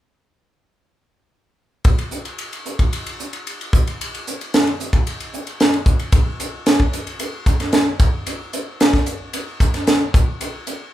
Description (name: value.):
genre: jazz.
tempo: 112 BPM.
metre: 4/4.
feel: straight.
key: none.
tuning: none.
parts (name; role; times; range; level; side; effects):
crisp fusion drum kit; drums; 1.8-10.8 s; hi-hat, kick drum, ride cymbal, snare drum; -17 LUFS; equal; none.
room: moderate large studio reverb, RT60 0.7 s.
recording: band playing live in one room.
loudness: -17 LUFS.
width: side -13 dB against mid.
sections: 1.9-6.1 A section; 6.1-10.9 B section.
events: none.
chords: none.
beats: | 1.86 2.39 2.93 3.46 | 4.00 4.53 5.07 5.60 | 6.13 6.67 7.20 7.74 | 8.27 8.81 9.34 9.88 | 10.41.